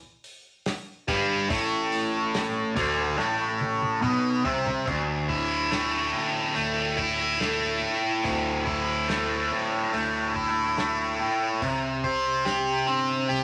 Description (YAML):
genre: psychedelic rock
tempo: 71 BPM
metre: 4/4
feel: straight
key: unclear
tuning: A4 = 444 Hz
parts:
  - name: cloth-damped thuddy drum kit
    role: drums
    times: 0.2-13.4 s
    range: crash cymbal, hi-hat, kick drum, snare drum, toms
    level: -37 LUFS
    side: equal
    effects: none
  - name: overdriven electric guitar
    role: riff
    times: 1.1-13.4 s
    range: D2 to C5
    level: -26 LUFS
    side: equal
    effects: phaser
  - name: fuzz picked electric bass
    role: bass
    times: 1.1-13.4 s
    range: D1 to D2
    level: -39 LUFS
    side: equal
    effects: overdrive
room: moderate studio reverb, RT60 0.5 s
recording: none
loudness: -26 LUFS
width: mono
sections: 0.0-4.9 A section; 4.9-13.4 B section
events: drum fill 3.2-4.9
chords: 0.0 D5; 4.9 Dsus2; 11.6 C5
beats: 0.67 | 1.50 2.34 3.18 4.03 | 4.87 5.71 6.55 7.40 | 8.24 9.09 9.93 10.77 | 11.62 12.46 13.30